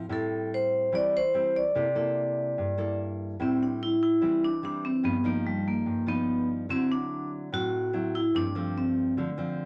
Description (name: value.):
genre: bossa nova.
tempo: 146 BPM.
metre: 4/4.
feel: straight.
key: A minor from 3.4 s.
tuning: A4 = 440 Hz.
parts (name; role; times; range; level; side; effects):
nylon-string guitar; accompaniment; 0.0-9.7 s; G2 to A4; -35 LUFS; equal; none.
vibraphone with medium hard mallets; melody; 0.1-9.2 s; G3 to D5; -29 LUFS; equal; none.
room: moderate studio ambience, RT60 0.4 s.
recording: none.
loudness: -28 LUFS.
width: mono.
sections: 0.0-3.4 A section; 3.4-9.7 B section.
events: none.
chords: 0.1 Am7; 1.7 C13; 3.4 Am7; 5.0 G7alt; 6.7 D9; 8.3 G9sus4.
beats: | 0.10 0.51 0.92 1.34 | 1.75 2.16 2.57 2.98 | 3.39 3.81 4.22 4.63 | 5.04 5.46 5.87 6.28 | 6.69 7.10 7.52 7.93 | 8.34 8.75 9.17 9.58.